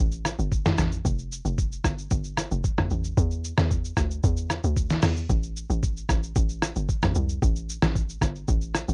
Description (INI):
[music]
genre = amapiano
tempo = 113 BPM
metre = 4/4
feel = straight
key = unclear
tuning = A4 = 440 Hz
[part]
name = hollow log drum bass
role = bass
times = 0.0-8.9 s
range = F1 to E2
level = -30 LUFS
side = equal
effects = none
[part]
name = dusty soul sampler-style drum kit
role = drums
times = 0.1-8.9 s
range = hi-hat, kick drum, rim click, shaker, snare drum, toms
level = -28 LUFS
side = equal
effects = overdrive
[sound]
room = little or no reverb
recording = home recording on cassette, lossy compression artefacts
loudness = -26 LUFS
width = mono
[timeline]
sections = 0.0-8.9 A section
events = none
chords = none